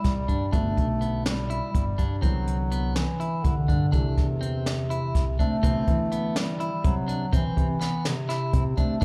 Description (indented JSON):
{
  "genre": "progressive instrumental, band music in an uneven meter",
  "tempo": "247 BPM (eighths)",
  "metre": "7/8",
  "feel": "straight",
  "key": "C lydian",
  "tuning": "A4 = 440 Hz",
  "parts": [
    { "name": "mellow bass clarinet", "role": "melody", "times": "0.0-9.0 s", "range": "C3 to A3", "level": "-30 LUFS", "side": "equal", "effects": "slapback echo, digital delay" },
    { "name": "dark baby grand piano", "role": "accompaniment", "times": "0.0-9.0 s", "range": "D3 to F#4", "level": "-42 LUFS", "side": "equal", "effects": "none" },
    { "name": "clean electric guitar", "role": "arpeggios", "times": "0.0-9.0 s", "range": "B3 to E4", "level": "-37 LUFS", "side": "equal", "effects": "slapback echo" },
    { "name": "fingered electric bass", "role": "bass", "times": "0.0-9.0 s", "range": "G1 to E3", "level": "-31 LUFS", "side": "equal", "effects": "none" },
    { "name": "jazz brush drum kit", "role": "drums", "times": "0.0-9.0 s", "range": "hi-hat, kick drum, snare drum", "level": "-28 LUFS", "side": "equal", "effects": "none" }
  ],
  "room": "little or no reverb",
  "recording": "live gig heard through the venue's PA, club reverb",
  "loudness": "-25 LUFS",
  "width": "mono",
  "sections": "0.0-5.6 A section; 5.6-9.0 B section",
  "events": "none",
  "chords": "0.0 Cmaj7; 0.5 Gmaj9; 2.2 Cmaj7; 3.9 C6; 5.6 Cmaj7"
}